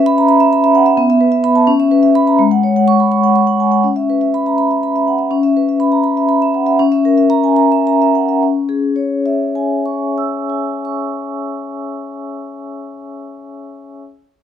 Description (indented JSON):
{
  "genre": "classical, contemporary piece for solo vibraphone",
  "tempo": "70-86 BPM (dotted quarters)",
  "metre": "6/8",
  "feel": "rubato",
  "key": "C# dorian",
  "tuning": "A4 = 441 Hz",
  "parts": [
    { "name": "vibraphone with medium hard mallets", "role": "solo", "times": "0.0-14.0 s", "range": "G#3 to E6", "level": "-12 LUFS", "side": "equal", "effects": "none" }
  ],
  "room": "moderate stone room reverb, RT60 1.0 s",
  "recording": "dark, warm production",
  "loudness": "-12 LUFS",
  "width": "side -9 dB against mid",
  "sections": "0.0-5.3 A section; 5.3-8.4 B section; 8.4-11.8 C section",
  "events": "slowing down 4.6-8.4",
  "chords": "0.0 C#m7; 1.0 B7sus4; 1.7 C#m7; 2.4 G#7sus4; 3.8 C#m7; 6.8 F#9/C#; 8.4 C#m",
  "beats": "0.28 | 0.98 1.68 | 2.39 3.11 | 3.84 4.58 | 5.31 6.04 | 6.78 7.56 | 8.40 9.25 | 10.09 10.94"
}